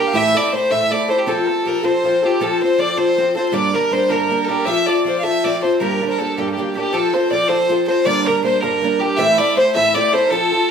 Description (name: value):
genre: celtic folk, Celtic jig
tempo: 106 BPM (dotted quarters)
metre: 6/8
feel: straight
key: unclear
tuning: A4 = 440 Hz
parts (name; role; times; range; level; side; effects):
- clear fiddle; melody; 0.0-10.7 s; F4 to F5; -18 LUFS; equal; slapback echo
- rich fiddle; second line; 0.0-10.7 s; G4 to F5; -23 LUFS; left 3 dB; none
- picked old ladder-braced acoustic guitar; accompaniment; 0.0-10.7 s; G2 to Bb4; -19 LUFS; equal; none
- open-back banjo; second line; 6.8-10.7 s; G4 to E5; -24 LUFS; right 1 dB; none
room: wet studio reverb, RT60 0.5 s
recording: heard from further back in the room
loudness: -15 LUFS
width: side -7 dB against mid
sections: 0.0-6.9 A section; 6.9-10.7 A section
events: none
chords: 0.1 Am; 1.3 F; 3.5 Gm; 4.7 F; 5.8 Gm; 6.9 F; 8.1 Gm; 9.2 Am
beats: | 0.14 0.70 | 1.27 1.83 | 2.40 2.97 | 3.53 4.10 | 4.66 5.23 | 5.79 6.36 | 6.92 7.49 | 8.06 8.62 | 9.19 9.75 | 10.32